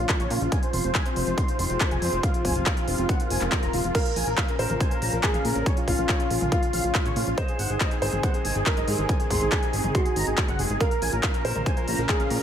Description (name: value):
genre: uplifting trance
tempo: 140 BPM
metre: 4/4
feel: straight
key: Bb minor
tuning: A4 = 440 Hz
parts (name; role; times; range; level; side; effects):
- dense compressed supersaw; melody; 0.0-12.4 s; F4 to C6; -30 LUFS; equal; sidechain pumping, low-pass filter
- supersaw pad; sustained chords; 0.0-12.4 s; Ab2 to F4; -32 LUFS; left 1 dB; phaser, sidechain pumping, low-pass filter
- plucky analog bass; bass; 0.0-12.4 s; Eb1 to Bb2; -28 LUFS; equal; sidechain pumping
- big-room dance drum kit; drums; 0.1-12.4 s; crash cymbal, handclaps, hi-hat, toms; -30 LUFS; equal; sidechain pumping on hats, sidechain pumping on cymbals, sidechain pumping on toms
- electronic kick drum; drums; 0.1-12.2 s; none; -25 LUFS; equal; none
- swell; sound effects; 3.2-3.9 s; none; -39 LUFS; left 2 dB; none
- felt-muted upright piano; second line; 3.9-12.4 s; F4 to C5; -30 LUFS; right 1 dB; ping-pong delay
room: light reverb, digital ambience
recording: none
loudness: -22 LUFS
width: side -9 dB against mid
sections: 0.0-12.4 A section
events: swell 3.2-3.9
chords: 0.0 Bbm; 0.5 Fm; 3.9 Bbm; 7.4 Ab; 10.8 Bbm